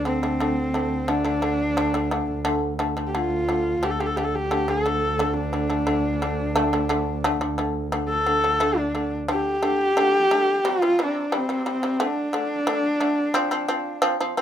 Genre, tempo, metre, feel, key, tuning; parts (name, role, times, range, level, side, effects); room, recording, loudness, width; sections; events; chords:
mongolian traditional, Mongolian folk; 88 BPM; 4/4; straight; D yu mode; A4 = 440 Hz
warm horsehead fiddle; melody; 0.0-14.1 s; C4 to A4; -23 LUFS; equal
warm double bass; drone; 0.0-9.4 s; D2; -29 LUFS; right 1 dB; stereo widening
shamisen; arpeggios; 0.1-14.4 s; C3 to C4; -25 LUFS; left 1 dB
wet studio reverb, RT60 0.6 s; rough home demo mix; -21 LUFS; side -10 dB against mid
0.0-9.3 A section; 9.3-14.4 B section
0.0 D5; 10.6 C5; 12.0 D5; 13.4 F5